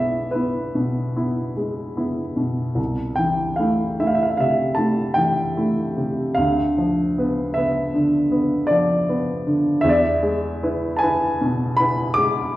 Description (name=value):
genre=classical, romantic nocturne for solo piano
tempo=48-54 BPM (dotted quarters)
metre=9/8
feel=rubato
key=A minor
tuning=A4 = 440 Hz
part: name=clear upright piano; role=solo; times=0.0-12.6 s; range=B1 to D6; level=-18 LUFS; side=equal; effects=none
room=wet recital hall reverb, RT60 1.5 s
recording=heard from further back in the room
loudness=-18 LUFS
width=side -15 dB against mid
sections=0.0-12.6 A section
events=none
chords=0.0 E7/B; 2.8 Am/C; 6.4 Bdim/D; 9.8 E